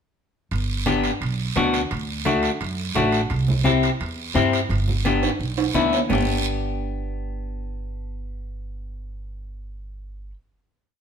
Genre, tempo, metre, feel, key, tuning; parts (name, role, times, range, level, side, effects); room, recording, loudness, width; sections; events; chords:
latin, cumbia; 172 BPM; 4/4; straight; G major; A4 = 440 Hz
upright bass; bass; 0.5-10.3 s; G1 to G2; -26 LUFS; right 1 dB
guiro; percussion; 0.5-6.2 s; -31 LUFS; right 6 dB
timbales; percussion; 0.5-6.2 s; -30 LUFS; right 7 dB
semi-hollow electric guitar; accompaniment; 0.9-10.3 s; A3 to G4; -22 LUFS; left 4 dB
congas; percussion; 0.9-6.2 s; -30 LUFS; right 4 dB
moderate stone room reverb, RT60 1.1 s; band playing live in one room; -20 LUFS; side -7 dB against mid
0.5-6.1 A section; 6.1-8.9 final chord
drum fill 5.2-6.1
0.5 G; 1.9 D; 3.3 C; 4.7 G